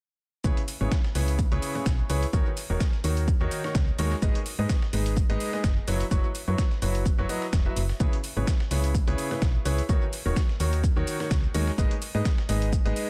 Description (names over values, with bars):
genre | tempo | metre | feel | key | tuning
piano house | 127 BPM | 4/4 | swing 55% on 16ths | C# dorian | A4 = 440 Hz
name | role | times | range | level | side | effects
clear baby grand piano | riff | 0.4-13.1 s | C#3 to E5 | -33 LUFS | equal | sidechain pumping, dub echo
solid FM bass | bass | 0.4-12.9 s | D#1 to G#2 | -29 LUFS | equal | sidechain pumping
dusty soul sampler-style drum kit | drums | 0.4-13.1 s | hi-hat, shaker, snare drum | -42 LUFS | equal | sidechain pumping on perc, high-pass filter on perc, studio reverb, sidechain pumping on hats, high-pass filter on hats, high-pass filter on snare, dub echo
electronic kick drum | drums | 0.4-12.8 s | none | -27 LUFS | equal | overdrive, studio reverb
electronic hi-hat | drums | 0.7-13.1 s | none | -41 LUFS | equal | overdrive, studio reverb
room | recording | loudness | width
digital ambience | echo-heavy mix | -26 LUFS | mono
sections
0.4-13.1 A section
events
none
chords
0.4 C#m7; 2.3 D#m7; 4.2 G#m; 5.9 F#7sus4; 8.0 C#m7; 9.9 D#m7; 11.8 G#m